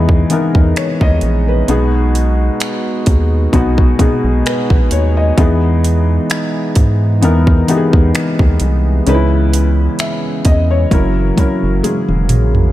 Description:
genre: contemporary R&B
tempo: 65 BPM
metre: 4/4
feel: swing 54% on 16ths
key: B major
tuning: A4 = 440 Hz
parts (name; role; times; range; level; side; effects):
- felt-muted upright piano; accompaniment; 0.0-12.7 s; B2 to E5; -16 LUFS; left 2 dB; none
- pipe organ, principal; sustained chords; 0.0-12.7 s; C#3 to G#4; -21 LUFS; right 1 dB; sidechain pumping
- rubbery square bass; bass; 0.0-12.7 s; E1 to G#2; -14 LUFS; equal; none
- trap drum kit; drums; 0.1-12.7 s; finger snaps, hi-hat, kick drum, toms; -14 LUFS; equal; none
room: digital ambience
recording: dark, warm production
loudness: -11 LUFS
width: side -15 dB against mid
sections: 0.0-12.7 A section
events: drum fill 11.8-12.7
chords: 0.0 Emaj7; 1.7 B6; 5.4 Emaj7; 9.1 C#m7; 10.9 F#7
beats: 0.76 | 1.68 2.61 3.53 4.45 | 5.38 6.30 7.22 8.14 | 9.07 9.99 10.91 11.84

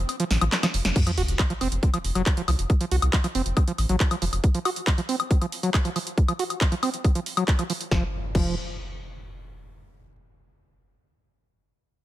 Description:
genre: psychedelic trance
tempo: 138 BPM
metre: 4/4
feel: straight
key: unclear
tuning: A4 = 437 Hz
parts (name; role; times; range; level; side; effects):
- round analog bass; bass; 0.0-4.4, 7.9-8.6 s; F1 to C2; -25 LUFS; equal; none
- techno drum kit; drums; 0.1-8.4 s; crash cymbal, handclaps, hi-hat, snare drum, woodblock; -28 LUFS; left 1 dB; none
- overdriven acid bass; riff; 0.2-8.6 s; F3 to Gb4; -29 LUFS; moving between left 3 dB and right 5 dB; auto-pan, sidechain pumping, ping-pong delay
- electronic kick drum; drums; 1.0-8.4 s; none; -21 LUFS; equal; overdrive
- sub drop and impact; sound effects; 1.0-2.7, 7.9-9.7 s; none; -33 LUFS; equal; none
room: digital ambience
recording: none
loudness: -22 LUFS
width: side -14 dB against mid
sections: 1.0-7.9 A section; 7.9-9.7 B section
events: break 0.0-1.0; drum fill 0.3-1.0; band accent 0.8; impact 1.0-2.7; filter sweep on acid bass 1.0-7.9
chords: 0.0 F5; 7.9 N.C.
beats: 0.09 0.52 | 0.96 1.39 1.83 2.26 | 2.70 3.13 3.57 4.00 | 4.44 4.87 5.31 5.74 | 6.18 6.61 7.04 7.48 | 7.92 8.35 8.78 9.22

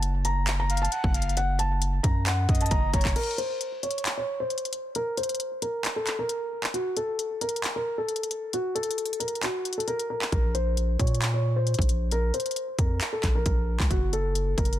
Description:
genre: hip hop, trap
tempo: 134 BPM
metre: 4/4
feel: half-time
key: unclear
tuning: A4 = 441 Hz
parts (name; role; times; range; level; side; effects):
- felt-muted upright piano; melody; 0.0-14.8 s; Gb4 to Bb5; -29 LUFS; equal; low-pass filter, ping-pong delay
- long sustained 808-style bass; bass; 0.0-3.2, 10.3-14.8 s; Gb1 to Bb2; -26 LUFS; equal; none
- trap drum kit; drums; 0.0-14.8 s; crash cymbal, handclaps, hi-hat, kick drum; -27 LUFS; equal; none
- breathy flute-like synth lead; second line; 0.7-3.1 s; Db5 to Gb5; -36 LUFS; left 2 dB; chorus, ping-pong delay
room: little or no reverb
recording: dense, heavily limited modern master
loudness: -24 LUFS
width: side -13 dB against mid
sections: 0.0-3.2 A section; 3.2-14.8 B section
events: break 3.2-10.3; filter sweep on felt piano 3.2-14.8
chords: 0.0 Gbm; 3.2 N.C.; 13.9 Gbm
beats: 0.03 0.47 0.92 | 1.37 1.82 2.26 2.71 | 3.16 3.61 4.05 4.50 | 4.95 5.40 5.85 6.29 | 6.74 7.19 7.64 8.09 | 8.53 8.98 9.43 9.88 | 10.32 10.77 11.22 11.67 | 12.12 12.56 13.01 13.46 | 13.91 14.35

